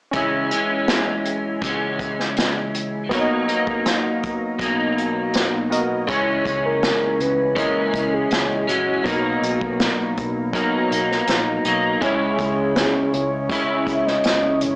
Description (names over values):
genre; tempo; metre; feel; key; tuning
indie pop, bedroom pop; 81 BPM; 4/4; straight; C# dorian; A4 = 439 Hz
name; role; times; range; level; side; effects
electric guitar at the edge of break-up; accompaniment; 0.1-14.8 s; B2 to E4; -21 LUFS; equal; analog chorus, vibrato effect
warm analog keys; accompaniment; 0.1-14.8 s; F#3 to E5; -25 LUFS; right 1 dB; chorus
unplugged drum kit; drums; 0.1-14.8 s; hi-hat, kick drum, snare drum; -24 LUFS; equal; none
soft octave-layered synth lead; melody; 6.1-14.8 s; F#4 to E5; -23 LUFS; equal; wide subtle chorus
vintage muted fingered electric bass; bass; 6.1-14.8 s; F#1 to C#2; -35 LUFS; equal; transformer saturation
room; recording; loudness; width
moderate small room reverb, RT60 0.5 s; cassette tape, small speaker sound; -18 LUFS; side -25 dB against mid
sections
0.1-6.1 A section; 6.1-14.8 B section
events
none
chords
0.1 C#m; 3.1 Bmaj7; 6.1 C#m; 9.1 Bmaj7; 12.0 C#m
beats
| 0.14 0.89 1.63 2.37 | 3.12 3.86 4.60 5.34 | 6.09 6.83 7.57 8.31 | 9.05 9.80 10.54 11.28 | 12.02 12.76 13.50 14.24